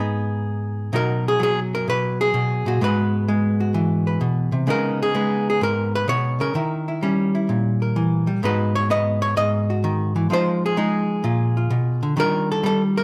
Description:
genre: solo jazz.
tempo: 128 BPM.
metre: 4/4.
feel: swing 68% on 8ths.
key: B major.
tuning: A4 = 439 Hz.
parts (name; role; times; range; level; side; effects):
archtop guitar, miked and amplified; solo; 0.0-13.0 s; G#2 to D#5; -21 LUFS; equal; none.
room: moderate large studio reverb, RT60 1.1 s.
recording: none.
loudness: -21 LUFS.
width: mono.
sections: 0.9-13.0 A section.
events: none.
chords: 0.0 G#m; 0.9 B6; 2.8 G#m7b13; 4.7 C#sus2; 6.6 D#7b9; 8.4 G#m7; 10.3 Fm7; 11.2 A#7b9; 12.2 D#maj9.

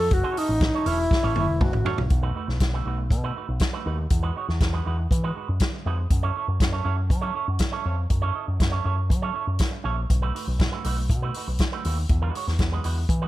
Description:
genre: disco.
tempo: 120 BPM.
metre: 4/4.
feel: straight.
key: F# dorian.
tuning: A4 = 441 Hz.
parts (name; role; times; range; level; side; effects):
breathy alto flute; melody; 0.0-2.0 s; D#4 to A4; -24 LUFS; left 1 dB; slapback echo.
electric guitar with an envelope filter; accompaniment; 0.0-13.3 s; G#3 to D#5; -31 LUFS; right 8 dB; none.
picked electric bass with an envelope filter; bass; 0.0-13.3 s; E1 to F#3; -25 LUFS; equal; none.
vintage drum kit; drums; 0.1-13.2 s; hi-hat, kick drum, snare drum, toms; -24 LUFS; equal; none.
room: small room ambience.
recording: none.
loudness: -22 LUFS.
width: side -16 dB against mid.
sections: 0.0-2.1 A section; 2.1-13.3 B section.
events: drum fill 1.1-2.1.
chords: 0.0 F#m7; 2.1 B7; 4.1 Emaj9; 6.1 F#m7; 10.1 B7; 12.1 Emaj9.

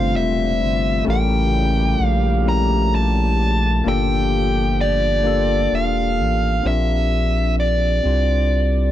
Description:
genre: slow six-eight R&B.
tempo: 43 BPM (dotted quarters).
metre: 6/8.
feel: straight.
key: unclear.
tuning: A4 = 440 Hz.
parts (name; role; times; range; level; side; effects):
dark smooth lead guitar; melody; 0.0-8.9 s; D5 to Bb5; -22 LUFS; equal; overdrive.
bell-like tine electric piano; accompaniment; 0.0-8.9 s; A3 to C5; -23 LUFS; left 5 dB; analog chorus.
chorused pulse-width pad; sustained chords; 0.0-6.6 s; Bb2 to G4; -28 LUFS; right 1 dB; none.
round analog bass; bass; 0.0-8.9 s; E1 to C2; -20 LUFS; right 1 dB; none.
room: little or no reverb.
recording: dry, close 1970s-style studio recording.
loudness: -16 LUFS.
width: side -12 dB against mid.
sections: 0.0-6.6 A section; 6.6-8.9 B section.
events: none.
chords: 0.0 Gm11; 1.1 A7b9; 3.9 Gm9; 6.6 Bb69.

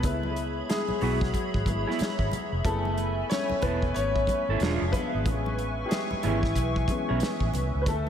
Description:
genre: R&B, neo-soul.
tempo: 92 BPM.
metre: 4/4.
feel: swing 61% on 16ths.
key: A major.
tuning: A4 = 440 Hz.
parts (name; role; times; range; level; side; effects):
warm concert grand piano; accompaniment; 0.0-8.1 s; E3 to C#5; -30 LUFS; left 3 dB; lush chorus.
hollow soft pad; sustained chords; 0.0-8.1 s; A3 to C#6; -33 LUFS; right 1 dB; ensemble chorus.
vintage muted fingered electric bass; bass; 0.0-8.1 s; E1 to D2; -30 LUFS; equal; none.
warm soul drum kit; drums; 0.0-8.1 s; hi-hat, kick drum, snare drum; -30 LUFS; equal; none.
congas; percussion; 0.0-8.1 s; none; -40 LUFS; right 2 dB; none.
electric guitar through a small old amp; second line; 1.0-7.2 s; B3 to A4; -35 LUFS; right 7 dB; none.
room: moderate lush hall reverb, RT60 2.2 s.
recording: dreamy mix soaked in reverb.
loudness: -25 LUFS.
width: side -9 dB against mid.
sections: 0.0-8.1 A section.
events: grand piano solo 0.0-8.1.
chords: 0.0 C#m7; 2.6 F#m11; 4.6 E7b9; 5.3 Amaj9.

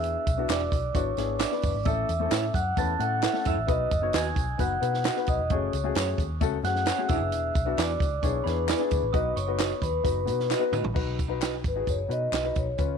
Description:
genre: uptempo 1960s-style soul.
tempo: 132 BPM.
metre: 4/4.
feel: straight.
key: B mixolydian.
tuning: A4 = 440 Hz.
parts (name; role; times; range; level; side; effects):
vibraphone with soft mallets; melody; 0.0-13.0 s; B4 to A5; -29 LUFS; left 1 dB; none.
glockenspiel with rubber mallets; second line; 0.0-10.7 s; B5 to A6; -36 LUFS; right 14 dB; none.
warm upright piano; accompaniment; 0.0-13.0 s; A3 to C#5; -32 LUFS; left 12 dB; none.
vintage muted picked electric bass; bass; 0.0-13.0 s; E1 to B2; -31 LUFS; equal; none.
compact cocktail drum kit; drums; 0.0-12.9 s; crash cymbal, hi-hat, kick drum, snare drum, toms; -30 LUFS; right 2 dB; none.
tambourine and handclaps; percussion; 0.3-12.9 s; none; -37 LUFS; left 6 dB; none.
electric guitar through a small old amp; stabs; 0.5-12.5 s; A3 to E5; -34 LUFS; right 13 dB; none.
room: little or no reverb.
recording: 1960s-style stereo with parts hard left and right.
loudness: -24 LUFS.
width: side -6 dB against mid.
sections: 0.0-11.0 A section; 11.0-13.0 B section.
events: drum fill 10.5-11.0; vibraphone solo 11.0-13.0.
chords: 0.0 E7; 1.9 A; 3.7 B; 5.5 F#madd9; 7.1 E7; 9.1 B.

